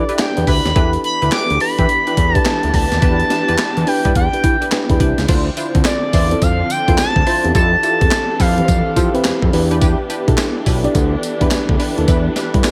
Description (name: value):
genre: R&B, new jack swing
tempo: 106 BPM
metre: 4/4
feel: swing 63% on 16ths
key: unclear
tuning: A4 = 439 Hz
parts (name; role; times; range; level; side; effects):
- expressive synth lead; melody; 0.0-9.2 s; D5 to D6; -21 LUFS; equal; chorus, phaser, digital delay
- mellow FM electric piano; accompaniment; 0.0-12.7 s; E3 to D5; -24 LUFS; equal; chorus
- fat analog bass; bass; 0.0-12.6 s; B1 to F3; -21 LUFS; equal; none
- funky polysynth comp; stabs; 0.1-12.5 s; D4 to C5; -26 LUFS; equal; chorus
- breakbeat sampler-style drum kit; drums; 0.1-12.7 s; crash cymbal, handclaps, hi-hat, kick drum, snare drum, tambourine; -20 LUFS; equal; gated reverb
- warm studio string section; sustained chords; 0.8-12.7 s; D3 to A4; -29 LUFS; equal; none
room: digital ambience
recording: none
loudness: -16 LUFS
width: mono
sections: 0.0-5.3 A section; 5.3-12.7 B section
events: none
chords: 0.0 Em7; 5.3 Dm9; 7.5 Fmaj9; 9.5 Em7